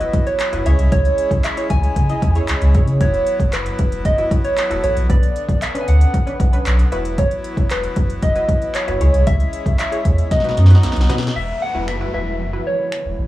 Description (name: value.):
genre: dance-pop.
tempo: 115 BPM.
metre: 4/4.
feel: straight.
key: E major.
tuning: A4 = 440 Hz.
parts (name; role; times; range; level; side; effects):
soft struck synth lead; melody; 0.0-13.2 s; B4 to G#5; -22 LUFS; right 1 dB; chorus, analog delay.
funky polysynth comp; accompaniment; 0.0-13.3 s; B3 to D#5; -27 LUFS; left 1 dB; chorus, sidechain pumping.
accordion; sustained chords; 0.0-11.3 s; D3 to E4; -29 LUFS; right 1 dB; sidechain pumping.
warm sub bass; bass; 0.0-13.3 s; E1 to C#3; -16 LUFS; equal; sidechain pumping.
deep house drum kit; drums; 0.0-13.0 s; finger snaps, handclaps, hi-hat, kick drum, snare drum; -19 LUFS; equal; none.
downlifter; sound effects; 11.4-13.3 s; none; -30 LUFS; right 1 dB; none.
room: digital ambience.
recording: dry, gritty hardware recording, cassette tape.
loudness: -15 LUFS.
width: side -15 dB against mid.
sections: 0.0-11.4 A section; 11.4-13.3 B section.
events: drum fill 10.3-11.4.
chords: 0.0 Esus2; 0.7 C#m; 3.0 Esus2; 5.1 Bmadd9; 6.9 Esus2; 9.0 C#m; 10.3 B; 11.4 Esus2.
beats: 0.40 | 0.92 1.44 1.97 2.49 | 3.01 3.53 4.05 4.57 | 5.09 5.62 6.14 6.66 | 7.18 7.70 8.23 8.75 | 9.27 9.79 10.31 10.83 | 11.36 11.88 12.40 12.92.